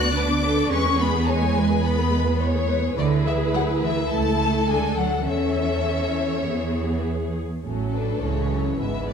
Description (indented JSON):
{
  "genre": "quick classical-period movement for string orchestra",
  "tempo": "104 BPM",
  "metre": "4/4",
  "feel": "uneven beats",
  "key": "A major",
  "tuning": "A4 = 439 Hz",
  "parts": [
    { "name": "warm symphonic violin section", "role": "melody", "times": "0.0-9.1 s", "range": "B4 to F#6", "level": "-28 LUFS", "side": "left 5 dB", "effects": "none" },
    { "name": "warm symphonic violin section", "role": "second line", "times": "0.0-9.1 s", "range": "B3 to D5", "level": "-28 LUFS", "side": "left 3 dB", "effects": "none" },
    { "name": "warm symphonic viola section", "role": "accompaniment", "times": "0.0-9.1 s", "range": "E3 to D5", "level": "-27 LUFS", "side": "left 1 dB", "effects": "none" },
    { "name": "dark symphonic double bass section", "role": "bass", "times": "0.0-9.1 s", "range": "G#1 to E2", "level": "-25 LUFS", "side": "right 2 dB", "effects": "none" },
    { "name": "rich studio cello section", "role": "bass", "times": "0.0-9.1 s", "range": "G#2 to F#4", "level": "-27 LUFS", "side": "right 3 dB", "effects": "none" }
  ],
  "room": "wet concert hall reverb, RT60 2.3 s",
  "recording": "dark, warm production",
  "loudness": "-20 LUFS",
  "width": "side -7 dB against mid",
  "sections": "0.0-7.7 A section; 7.7-9.1 B section",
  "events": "none",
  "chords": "0.0 Bm/D; 0.7 E; 3.0 E7/D; 4.1 A/C#; 5.3 A/E; 6.5 E; 7.7 A"
}